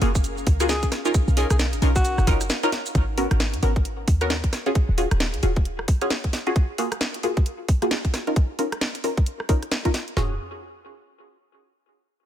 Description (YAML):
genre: UK garage, two-step garage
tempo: 133 BPM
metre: 4/4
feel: swing 60% on 16ths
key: Eb minor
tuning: A4 = 440 Hz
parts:
  - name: ethereal airy pad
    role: sustained chords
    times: 0.0-2.9 s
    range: Db4 to F5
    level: -36 LUFS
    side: equal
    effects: ensemble chorus, built-in reverb, sidechain pumping
  - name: punchy chord stab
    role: stabs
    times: 0.0-10.3 s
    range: Bb3 to A#4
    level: -26 LUFS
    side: equal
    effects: chorus, phaser, tape echo
  - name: short 808-style bass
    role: bass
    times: 0.0-5.9, 10.2-10.4 s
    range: Eb1 to Ab2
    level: -23 LUFS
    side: equal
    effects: tube saturation
  - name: garage drum kit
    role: drums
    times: 0.0-10.1 s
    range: hi-hat, rim click, shaker, snare drum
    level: -28 LUFS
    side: equal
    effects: none
  - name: garage drum kit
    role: drums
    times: 0.2-10.3 s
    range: kick drum, snare drum, toms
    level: -20 LUFS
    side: equal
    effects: none
  - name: breathy alto saxophone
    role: melody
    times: 0.7-2.3 s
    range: F#4 to Ab4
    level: -31 LUFS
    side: left 1 dB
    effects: tape echo
room: digital ambience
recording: none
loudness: -20 LUFS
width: side -10 dB against mid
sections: 0.0-2.9 A section; 2.9-10.2 B section; 10.2-12.0 C section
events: drop 0.0-2.9; break 2.5-2.9; filter sweep on synth stab 2.9-10.2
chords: 0.0 Gbmaj9; 0.9 Bmaj9#11; 2.9 Abm11; 4.5 Ebm11; 6.6 Gbmaj9; 8.1 Db69; 10.2 Ebm11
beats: 0.24 0.69 | 1.15 1.60 2.05 2.50 | 2.95 3.40 3.85 4.30 | 4.75 5.21 5.66 6.11 | 6.56 7.01 7.46 7.91 | 8.36 8.81 9.27 9.72 | 10.17